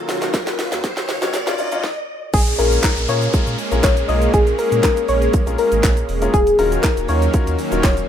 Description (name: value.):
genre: dance-pop.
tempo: 120 BPM.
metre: 4/4.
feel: straight.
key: unclear.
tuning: A4 = 440 Hz.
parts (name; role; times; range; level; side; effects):
lush unison pad; sustained chords; 0.0-8.1 s; Eb3 to F5; -24 LUFS; right 2 dB; chorus, sidechain pumping.
sub bass with octave; bass; 0.0-8.0 s; Eb1 to Bb2; -21 LUFS; equal; sidechain pumping.
riser and downlifter; sound effects; 0.0-6.3 s; none; -26 LUFS; right 1 dB; none.
house drum kit; drums; 0.1-8.1 s; crash cymbal, handclaps, hi-hat, kick drum, shaker, snare drum; -19 LUFS; equal; none.
tube shaker; percussion; 0.1-8.1 s; none; -41 LUFS; right 13 dB; none.
clear concert grand piano; accompaniment; 1.2-7.9 s; Gb3 to Bb4; -26 LUFS; left 7 dB; sidechain pumping.
soft round pluck; melody; 2.3-7.9 s; Ab4 to Eb5; -19 LUFS; left 2 dB; chorus, sidechain pumping, ping-pong delay.
room: light reverb.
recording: rough home demo mix, high-pass filter.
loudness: -15 LUFS.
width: side -9 dB against mid.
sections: 0.0-2.3 A section; 2.3-8.1 B section.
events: build-up 0.0-2.3; drum fill 0.0-1.8; riser 0.0-2.3; stop 1.8-2.3; drop 2.3-8.1.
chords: 0.0 Ebm9; 2.3 Bbm7; 6.3 Ebm9.